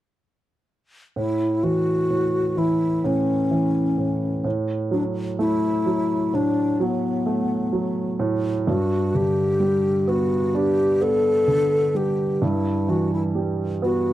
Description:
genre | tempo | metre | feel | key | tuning
pop | 64 BPM | 4/4 | straight | D major | A4 = 437 Hz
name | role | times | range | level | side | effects
hollow alto flute | melody | 1.2-14.1 s | B3 to A4 | -22 LUFS | left 2 dB | slapback echo
warm grand piano | accompaniment | 1.2-14.1 s | G2 to D4 | -23 LUFS | right 3 dB | none
room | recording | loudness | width
light reverb | dry, close 1970s-style studio recording | -20 LUFS | side -14 dB against mid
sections
1.2-14.1 A section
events
none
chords
1.2 A; 4.5 D69/A (rootless); 8.7 G; 12.4 Emadd9/G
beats
| 1.17 2.11 3.04 3.98 | 4.92 5.86 6.79 7.73 | 8.67 9.61 10.54 11.48 | 12.42 13.36

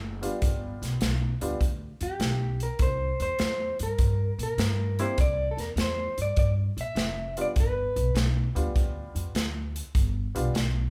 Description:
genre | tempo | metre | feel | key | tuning
electric blues shuffle | 101 BPM | 4/4 | swing 68% on 8ths | G mixolydian | A4 = 442 Hz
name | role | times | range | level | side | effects
upright bass | bass | 0.0-10.8 s | F1 to Bb2 | -31 LUFS | equal | none
warm upright piano | accompaniment | 0.2-10.5 s | G3 to F4 | -36 LUFS | equal | none
natural country drum kit | drums | 0.2-10.7 s | hi-hat, kick drum, snare drum | -31 LUFS | equal | none
electric guitar through a small old amp | melody | 2.0-8.1 s | G4 to E5 | -33 LUFS | equal | none
room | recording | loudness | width
light reverb | band playing live in one room | -28 LUFS | mono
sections
0.0-10.9 A section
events
none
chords
0.4 G7; 2.8 C7; 7.6 G7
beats
| 0.42 1.02 1.61 2.21 | 2.80 3.40 3.99 4.59 | 5.18 5.78 6.37 6.97 | 7.56 8.16 8.75 9.35 | 9.95 10.54

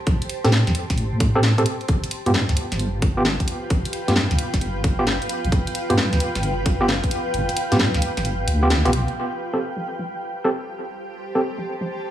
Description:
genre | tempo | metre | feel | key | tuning
UK garage, two-step garage | 132 BPM | 4/4 | swing 66% on 16ths | A minor | A4 = 440 Hz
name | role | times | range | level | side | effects
granular cloud pad | texture | 0.0-12.1 s | F4 to A5 | -28 LUFS | equal | built-in reverb, sidechain pumping
deep soft wobble bass | bass | 0.1-9.1 s | G1 to A2 | -21 LUFS | equal | chorus, tube saturation, sidechain pumping
electronic kick drum | drums | 0.1-7.1 s | none | -21 LUFS | equal | none
garage drum kit | drums | 0.1-11.9 s | hi-hat, snare drum | -25 LUFS | equal | low-pass filter on hats, low-pass filter on cymbals, low-pass filter on snare
overdriven tine electric piano | stabs | 0.4-11.4 s | B3 to A4 | -24 LUFS | right 1 dB | fast tremolo, low-pass filter, digital delay
room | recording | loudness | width
light reverb | studio reverb | -19 LUFS | side -11 dB against mid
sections
0.0-9.2 A section; 9.2-12.1 B section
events
fade-in on ambient pad 0.0-9.2; kick drops out 7.3-9.2; band accent 8.7; filter sweep on tine electric piano 9.2-12.1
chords
0.0 Am7; 1.7 G7; 9.2 Am7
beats
| 0.07 0.52 0.98 1.43 | 1.89 2.34 2.79 3.25 | 3.70 4.16 4.61 5.07 | 5.52 5.98 6.43 6.88 | 7.34 7.79 8.25 8.70 | 9.16 9.61 10.07 10.52 | 10.98 11.43 11.88

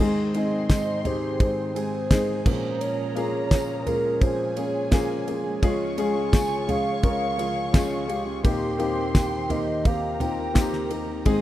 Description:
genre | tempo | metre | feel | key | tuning
piano-driven pop | 85 BPM | 4/4 | straight | Ab major | A4 = 440 Hz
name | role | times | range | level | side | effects
dark studio violin section | second line | 0.0-11.4 s | Ab4 to Eb6 | -36 LUFS | right 1 dB | none
dark grand piano | accompaniment | 0.0-11.4 s | Eb2 to C5 | -27 LUFS | left 2 dB | none
chorused pulse-width pad | sustained chords | 0.0-11.4 s | Db2 to Ab4 | -34 LUFS | right 1 dB | none
fingerpicked plugged-in steel-string acoustic guitar | riff | 0.0-11.4 s | Ab2 to Ab4 | -34 LUFS | right 7 dB | none
damped 70s drum kit | drums | 0.3-11.4 s | crash cymbal, kick drum, ride cymbal, snare drum, toms | -22 LUFS | equal | none
hollow clarinet-like synth lead | melody | 0.4-10.9 s | Bb4 to Ab5 | -29 LUFS | right 1 dB | chorus
tambourine | percussion | 0.7-10.7 s | none | -42 LUFS | left 2 dB | none
room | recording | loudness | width
light reverb, studio ambience | rough home demo mix | -22 LUFS | side -14 dB against mid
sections
0.0-11.4 A section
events
none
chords
0.0 Ab; 2.5 Bbm7; 5.6 Db; 8.4 Eb6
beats
0.69 1.40 2.10 | 2.81 3.51 4.22 4.92 | 5.63 6.33 7.04 7.74 | 8.44 9.15 9.85 10.56 | 11.26

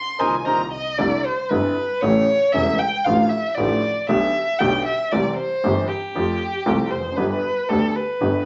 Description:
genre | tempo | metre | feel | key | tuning
tango | 116 BPM | 4/4 | rubato | C major | A4 = 440 Hz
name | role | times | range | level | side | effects
warm violin | second line | 0.0-8.5 s | G4 to C6 | -24 LUFS | equal | none
bandoneon | melody | 0.2-0.6 s | Bb4 to Eb5 | -23 LUFS | equal | none
warm baby grand piano | accompaniment | 0.2-8.4 s | E1 to G4 | -25 LUFS | equal | none
clear double bass | bass | 0.2-8.4 s | E1 to F2 | -29 LUFS | equal | none
room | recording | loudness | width
wet studio reverb, RT60 0.6 s | vinyl crackle, nothing above 7.7 kHz | -21 LUFS | mono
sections
1.0-8.5 A section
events
band accent 0.0-1.0; violin solo 1.0-8.5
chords
0.0 Cm7; 1.0 Cadd9; 2.0 A7; 3.1 Dm/A; 4.1 G/B; 5.1 C; 6.1 Fadd9; 7.2 G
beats
0.46 | 0.98 1.50 2.02 2.54 | 3.06 3.57 4.09 4.60 | 5.12 5.63 6.15 6.66 | 7.18 7.69 8.21

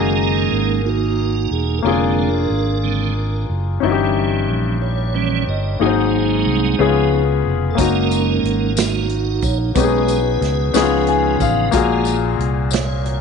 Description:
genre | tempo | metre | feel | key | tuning
slow gospel | 61 BPM (dotted quarters) | 6/8 | straight | unclear | A4 = 439 Hz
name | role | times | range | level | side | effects
clear baby grand piano | accompaniment | 0.0-13.2 s | G2 to Ab5 | -19 LUFS | left 11 dB | none
tonewheel organ | sustained chords | 0.0-13.2 s | D3 to F5 | -21 LUFS | right 11 dB | slow rotary speaker, overdrive, chorus vibrato
fingered electric bass | bass | 0.0-13.2 s | Fb1 to Db2 | -21 LUFS | right 1 dB | none
natural country drum kit | drums | 7.8-13.2 s | hi-hat, kick drum, snare drum | -23 LUFS | right 4 dB | none
tambourine | percussion | 7.8-13.0 s | none | -31 LUFS | left 14 dB | none
room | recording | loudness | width
light reverb, small room ambience | 1960s-style stereo with parts hard left and right, nothing above 10.4 kHz | -15 LUFS | side -6 dB against mid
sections
0.0-13.2 A section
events
tonewheel organ solo 0.0-13.2; grand piano fill 10.7-11.7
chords
0.0 Gb69; 1.9 Bb7/F; 3.8 Eb7b9/G; 5.8 Ab7; 6.8 Db7; 7.8 Gb6; 9.8 Cb69; 10.7 Db7; 11.7 Gbmaj9/Bb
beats
0.86 | 1.85 2.84 | 3.83 4.82 | 5.81 6.79 | 7.78 8.77 | 9.76 10.75 | 11.73 12.72

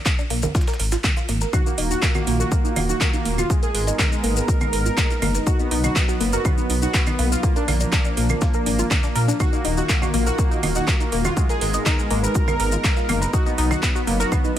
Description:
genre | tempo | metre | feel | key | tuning
melodic techno | 122 BPM | 4/4 | straight | Eb harmonic minor | A4 = 440 Hz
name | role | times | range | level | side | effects
tight sequenced synth | arpeggios | 0.0-14.6 s | Bb3 to Eb5 | -27 LUFS | left 1 dB | chorus, sidechain pumping, ping-pong delay
breakbeat sampler-style drum kit | drums | 0.1-14.6 s | hi-hat, shaker, snare drum | -36 LUFS | right 1 dB | none
electronic kick drum | drums | 0.1-14.4 s | none | -21 LUFS | equal | none
house drum kit | drums | 0.1-14.6 s | claves, congas, handclaps, hi-hat | -26 LUFS | right 2 dB | none
maracas | percussion | 0.1-14.5 s | none | -32 LUFS | left 7 dB | none
swelling detuned saw bass | bass | 0.3-14.6 s | Eb1 to Bb2 | -23 LUFS | equal | sidechain pumping
soft supersaw | melody | 1.5-14.6 s | Ab3 to Bb4 | -26 LUFS | right 1 dB | sidechain pumping, digital delay
warm analog pad | sustained chords | 1.5-14.6 s | Eb3 to Bb4 | -29 LUFS | right 1 dB | chorus, sidechain pumping
room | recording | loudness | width
digital ambience | none | -18 LUFS | side -11 dB against mid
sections
0.0-14.6 A section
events
filter sweep on synth arpeggio sound 0.0-14.6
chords
0.0 Bb5; 1.5 Ebm; 3.5 Abm7; 5.5 B; 7.4 Bb; 9.4 Ebm; 11.4 Abm7; 13.3 B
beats
0.06 0.55 1.04 | 1.53 2.02 2.52 3.01 | 3.50 3.99 4.48 4.97 | 5.47 5.96 6.45 6.94 | 7.43 7.93 8.42 8.91 | 9.40 9.89 10.38 10.88 | 11.37 11.86 12.35 12.84 | 13.34 13.83 14.32

